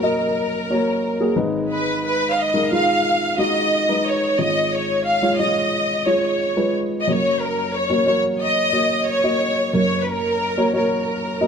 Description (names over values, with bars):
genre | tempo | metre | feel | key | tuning
pop | 90 BPM | 4/4 | straight | F# major | A4 = 440 Hz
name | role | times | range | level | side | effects
warm studio violin section | melody | 0.0-11.5 s | A#4 to E#5 | -20 LUFS | equal | none
dark upright piano | accompaniment | 0.0-11.5 s | F#1 to D#5 | -21 LUFS | equal | none
room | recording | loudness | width
moderate plate reverb, RT60 3.0 s | none | -17 LUFS | side -6 dB against mid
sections
0.0-11.5 A section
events
none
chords
0.0 F#; 1.4 G#m; 4.4 C#/G#; 7.1 F#